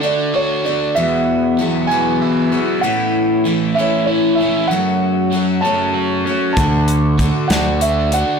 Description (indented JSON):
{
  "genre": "folk rock and heartland rock",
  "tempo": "64 BPM (dotted quarters)",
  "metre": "6/8",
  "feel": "straight",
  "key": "A major",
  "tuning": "A4 = 442 Hz",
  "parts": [
    { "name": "dark concert grand piano", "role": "melody", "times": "0.0-8.4 s", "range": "C#5 to A5", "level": "-20 LUFS", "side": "right 4 dB", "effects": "digital delay" },
    { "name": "picked twelve-string acoustic guitar", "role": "accompaniment", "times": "0.0-8.4 s", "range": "E2 to F#4", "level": "-19 LUFS", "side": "left 4 dB", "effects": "none" },
    { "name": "crunchy overdriven guitar", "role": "riff", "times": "0.0-8.4 s", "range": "E2 to F#4", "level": "-19 LUFS", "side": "right 1 dB", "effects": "phaser" },
    { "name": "modern bright picked electric bass", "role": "bass", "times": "6.6-8.2 s", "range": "D2", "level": "-17 LUFS", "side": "right 1 dB", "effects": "none" },
    { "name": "natural country drum kit", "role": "drums", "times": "6.6-8.3 s", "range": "hi-hat, kick drum, snare drum", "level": "-19 LUFS", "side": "equal", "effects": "none" }
  ],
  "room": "light reverb",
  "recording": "blown-out, overdriven recording, overdrive",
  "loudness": "-14 LUFS",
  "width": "side -6 dB against mid",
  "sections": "0.0-8.4 A section",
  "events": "none",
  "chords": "0.0 D; 1.0 Eadd9; 2.8 A; 4.7 F#m; 6.6 D",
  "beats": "0.04 | 0.97 1.90 | 2.84 3.77 | 4.70 5.64 | 6.57 7.50"
}